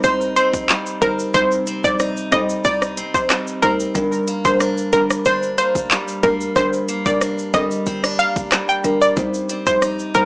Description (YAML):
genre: dancehall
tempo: 92 BPM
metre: 4/4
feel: straight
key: C minor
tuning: A4 = 440 Hz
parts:
  - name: analog pluck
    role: melody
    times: 0.0-10.3 s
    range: Bb4 to G5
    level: -18 LUFS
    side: equal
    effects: chorus
  - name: picked steel-string acoustic guitar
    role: arpeggios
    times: 0.0-10.3 s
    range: G2 to Eb4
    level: -26 LUFS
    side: right 1 dB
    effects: none
  - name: short 808-style bass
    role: bass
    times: 0.0-10.3 s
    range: F1 to D2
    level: -29 LUFS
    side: equal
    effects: none
  - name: island pop drum kit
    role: drums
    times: 0.0-10.3 s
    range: handclaps, hi-hat, kick drum, rim click, shaker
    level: -21 LUFS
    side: equal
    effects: overdrive
  - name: tube shaker and timbales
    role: percussion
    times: 0.0-10.3 s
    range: none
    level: -32 LUFS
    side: right 1 dB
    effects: none
  - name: impact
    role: sound effects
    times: 0.0-1.3 s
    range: none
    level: barely audible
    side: none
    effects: none
  - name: marimba with soft mallets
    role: accompaniment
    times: 1.0-10.3 s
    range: G3 to C5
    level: -22 LUFS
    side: equal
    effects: none
room: light reverb, digital ambience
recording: dry, gritty hardware recording, transformer saturation, small speaker sound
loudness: -16 LUFS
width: side -26 dB against mid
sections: 0.0-10.3 A section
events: impact 0.0-1.3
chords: 0.0 Cm; 4.0 Gm; 9.2 Cm